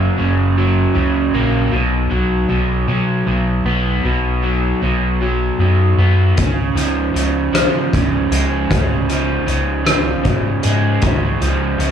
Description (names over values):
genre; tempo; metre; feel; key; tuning
indie rock; 52 BPM (dotted quarters); 6/8; straight; unclear; A4 = 440 Hz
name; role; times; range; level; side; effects
crunchy overdriven guitar; riff; 0.0-11.9 s; F#2 to B3; -17 LUFS; right 1 dB; slapback echo
fingered electric bass; bass; 0.0-11.9 s; F#1 to C#3; -18 LUFS; equal; none
loose indie drum kit; drums; 6.4-11.9 s; hi-hat, kick drum, rim click; -18 LUFS; left 1 dB; none
room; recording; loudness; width
small room ambience; live gig heard through the venue's PA, club reverb; -14 LUFS; side -8 dB against mid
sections
0.0-11.9 A section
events
none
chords
0.0 F#; 1.7 B5; 6.4 C#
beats
0.57 | 1.73 2.89 | 4.06 5.22 | 6.38 7.54 | 8.70 9.87 | 11.03